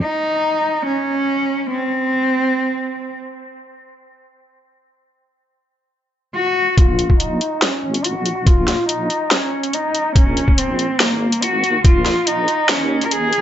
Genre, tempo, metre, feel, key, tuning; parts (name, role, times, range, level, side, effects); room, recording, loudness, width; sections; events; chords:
deep dubstep; 142 BPM; 4/4; half-time; Bb minor; A4 = 440 Hz
dark cello; melody; 0.0-3.1, 6.4-13.4 s; Bb3 to Bb4; -18 LUFS; equal; low-pass filter, dub echo
deep soft wobble bass; bass; 6.8-13.4 s; F1 to Eb2; -24 LUFS; equal; chorus, high-pass filter
dubstep drum kit; drums; 6.8-13.4 s; hi-hat, snare drum; -19 LUFS; left 1 dB; high-pass filter on hats, low-pass filter on hats, high-pass filter on snare, low-pass filter on snare
electronic kick drum; drums; 6.8-11.9 s; -13 LUFS; equal
moderate plate reverb, RT60 1.2 s; echo-heavy mix, nothing above 7.8 kHz; -15 LUFS; side -10 dB against mid
0.0-6.8 A section; 6.8-13.4 B section
build-up 6.8-13.4; filter sweep on cello 6.8-13.4
0.0 N.C.; 6.8 Bbm